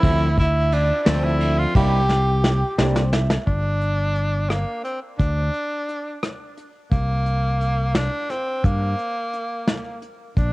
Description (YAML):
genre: progressive instrumental, band music in an uneven meter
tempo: 174 BPM (eighths)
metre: 5/8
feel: straight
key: G dorian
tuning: A4 = 440 Hz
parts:
  - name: breathy tenor saxophone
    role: melody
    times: 0.0-10.5 s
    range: Bb3 to G4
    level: -25 LUFS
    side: equal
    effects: cassette tape, analog delay
  - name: vibraphone with medium mallets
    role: second line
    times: 0.0-2.7 s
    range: C5 to G5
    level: -28 LUFS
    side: right 2 dB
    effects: cassette tape
  - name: vintage hollow-body jazz guitar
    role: accompaniment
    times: 0.0-3.5 s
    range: F3 to E5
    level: -25 LUFS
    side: equal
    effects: cassette tape
  - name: fretless electric bass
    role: bass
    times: 0.0-10.5 s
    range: G1 to G2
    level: -21 LUFS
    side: equal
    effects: none
  - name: soft brush drum kit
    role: drums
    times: 0.0-10.5 s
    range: hi-hat, kick drum, ride cymbal, rim click, snare drum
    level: -22 LUFS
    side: equal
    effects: cassette tape
room: small room ambience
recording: home recording on cassette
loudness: -19 LUFS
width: side -21 dB against mid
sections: 0.0-3.5 A section; 3.5-10.5 B section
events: drum fill 2.1-3.5; hollow-body jazz guitar fill 2.4-3.5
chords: 0.0 Dm7; 1.8 C7; 3.5 G5; 6.9 C5